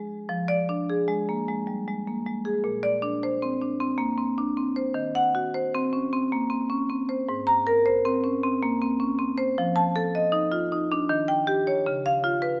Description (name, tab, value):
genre	classical, contemporary piece for solo marimba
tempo	78 BPM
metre	3/4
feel	rubato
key	F minor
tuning	A4 = 440 Hz
part	marimba with medium hard mallets	solo	0.0-12.6 s	Ab2 to Bb5	-26 LUFS	equal	none
room	moderate stone room reverb, RT60 1.4 s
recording	small speaker sound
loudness	-26 LUFS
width	mono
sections	0.3-12.6 A section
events	none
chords	0.3 Fm6; 2.6 Bbadd9; 4.9 Ebm6; 7.3 Abadd9; 9.6 F7; 11.1 Eb7; 11.9 C#7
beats	| 0.29 1.08 1.85 | 2.62 3.40 4.17 | 4.95 5.73 6.51 | 7.28 8.04 8.80 | 9.56 10.33 11.09 | 11.86